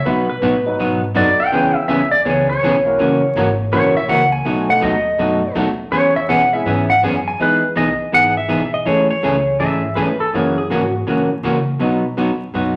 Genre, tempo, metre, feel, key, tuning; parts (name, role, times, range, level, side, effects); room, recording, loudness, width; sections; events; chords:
country, western swing; 163 BPM; 4/4; swing 64% on 8ths; E major; A4 = 439 Hz
pedal steel guitar; second line; 0.0-10.9 s; F#4 to G#5; -19 LUFS; equal
upright bass; bass; 0.0-12.8 s; F#1 to C#3; -29 LUFS; equal
vintage hollow-body jazz guitar; accompaniment; 0.1-12.8 s; B2 to G#4; -20 LUFS; equal
warm upright piano; accompaniment; 0.7-12.0 s; F#3 to B4; -28 LUFS; equal
clean lap steel guitar; melody; 7.4-9.6 s; B4 to F#5; -18 LUFS; equal
wet large studio reverb, RT60 0.8 s; vinyl crackle; -17 LUFS; mono
0.0-7.4 A section; 7.4-12.8 B section
pedal steel guitar solo 0.0-7.4
0.1 B; 1.5 C#m7; 3.0 F#7; 4.5 B7; 5.9 E6; 7.4 Emaj7; 8.9 Amaj7; 10.3 F#7; 11.8 B